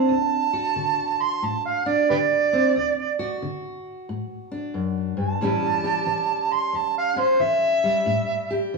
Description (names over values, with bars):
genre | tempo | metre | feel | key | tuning
acoustic country blues, solo or duo | 90 BPM | 4/4 | swing 65% on 8ths | D major | A4 = 442 Hz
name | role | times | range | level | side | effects
overdriven harmonica | melody | 0.0-8.7 s | G4 to C6 | -21 LUFS | right 4 dB | none
fingerpicked steel-string acoustic guitar | accompaniment | 0.0-8.8 s | D2 to G4 | -26 LUFS | left 1 dB | none
room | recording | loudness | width
wet large studio reverb, RT60 1.1 s | band playing live in one room | -20 LUFS | side -2 dB against mid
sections
0.0-8.8 A section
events
none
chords
0.0 D; 5.4 A7